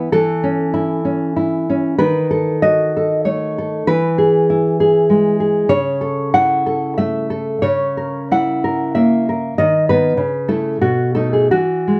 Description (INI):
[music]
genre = romantic piece for solo classical guitar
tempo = 95 BPM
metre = 3/4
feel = uneven beats, rubato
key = unclear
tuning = A4 = 441 Hz
[part]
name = nylon-string guitar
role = solo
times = 0.0-12.0 s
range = B2 to F#5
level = -17 LUFS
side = equal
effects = none
[sound]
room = moderate small room reverb, RT60 0.5 s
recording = dark, warm production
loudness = -17 LUFS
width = mono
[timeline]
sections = 0.0-12.0 A section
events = none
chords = 0.1 A/E; 2.0 B7/D#; 3.9 E; 5.7 A/C#; 7.6 F#7/C#; 9.6 B/D#; 10.2 A/C#; 10.8 B7